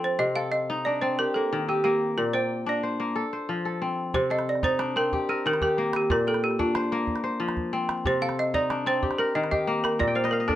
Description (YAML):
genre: west african traditional, West African string and xylophone music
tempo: 122 BPM (dotted quarters)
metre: 12/8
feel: straight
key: C dorian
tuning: A4 = 440 Hz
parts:
  - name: balafon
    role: melody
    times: 0.0-10.6 s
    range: F4 to F5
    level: -26 LUFS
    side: right 2 dB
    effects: none
  - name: kora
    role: arpeggios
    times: 0.0-10.6 s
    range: Bb2 to G5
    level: -27 LUFS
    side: left 3 dB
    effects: none
  - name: calabash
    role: percussion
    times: 4.1-10.6 s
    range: none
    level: -32 LUFS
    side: right 3 dB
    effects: none
room: moderate studio reverb, RT60 0.6 s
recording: none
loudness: -23 LUFS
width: side -12 dB against mid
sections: 0.0-4.1 A section; 4.1-10.6 A section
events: kora fill 10.1-10.6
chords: 0.2 Cm; 1.2 Eb; 2.2 Bb; 3.2 F; 4.1 Cm; 5.1 Eb; 6.1 Bb; 7.1 F5; 8.1 Cm; 9.0 Eb; 10.0 Bb